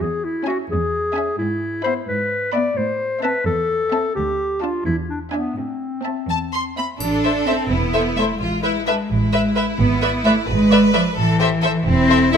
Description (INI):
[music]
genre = cinematic, playful, whimsical film cue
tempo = 87 BPM (dotted quarters)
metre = 6/8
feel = straight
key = A minor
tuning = A4 = 440 Hz
[part]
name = clear clarinet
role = second line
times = 0.0-6.7 s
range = B3 to D5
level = -22 LUFS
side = left 2 dB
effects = none
[part]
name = clear studio cello section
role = bass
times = 0.0-12.4 s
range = D2 to E4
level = -20 LUFS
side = right 1 dB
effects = none
[part]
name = clear chamber violin section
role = melody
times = 0.5-12.4 s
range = E5 to C6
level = -25 LUFS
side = left 3 dB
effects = none
[part]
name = clear chamber violin section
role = second line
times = 0.5-12.4 s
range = D4 to F5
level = -26 LUFS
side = left 1 dB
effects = none
[part]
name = rich studio viola section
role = accompaniment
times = 0.5-12.4 s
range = B3 to D5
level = -25 LUFS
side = equal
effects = none
[part]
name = rich studio double bass section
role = bass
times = 7.0-12.4 s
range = E1 to A1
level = -22 LUFS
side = right 2 dB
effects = none
[part]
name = triangle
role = percussion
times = 7.0-7.9 s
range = none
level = -34 LUFS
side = right 1 dB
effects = none
[sound]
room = light reverb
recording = none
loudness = -17 LUFS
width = side -7 dB against mid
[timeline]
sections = 0.0-7.0 A section; 7.0-12.4 B section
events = none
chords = 0.0 C#m/E; 1.4 E/G#; 2.8 Am; 4.2 Dm; 4.9 E7; 5.6 Am; 8.4 E/A; 9.8 E7/G#; 11.2 Am